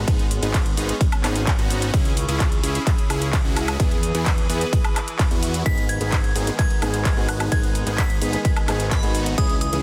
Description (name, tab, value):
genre	EDM, festival progressive house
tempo	129 BPM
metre	4/4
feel	straight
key	G# minor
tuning	A4 = 440 Hz
part	rich chamber string section	sustained chords	0.0-9.8 s	C#3 to B4	-35 LUFS	equal	sidechain pumping
part	supersaw chords	riff	0.0-9.8 s	B3 to G#4	-31 LUFS	equal	sidechain pumping, digital delay
part	fat analog bass	bass	0.0-9.8 s	G#1 to E2	-28 LUFS	equal	sidechain pumping
part	electronic kick drum	drums	0.1-9.5 s	none	-23 LUFS	equal	overdrive
part	pop drum kit	drums	0.1-9.8 s	handclaps, hi-hat, ride cymbal, woodblock	-30 LUFS	equal	none
part	glassy synth bell	melody	5.7-9.8 s	B5 to B6	-32 LUFS	equal	chorus, phaser, digital delay
part	warm baby grand piano	accompaniment	5.7-9.8 s	D#3 to G#4	-32 LUFS	equal	sidechain pumping, digital delay
room	little or no reverb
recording	dense, heavily limited modern master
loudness	-21 LUFS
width	mono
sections	0.0-9.8 A section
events	none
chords	0.0 G#m; 1.9 C#m; 3.8 E; 5.7 G#m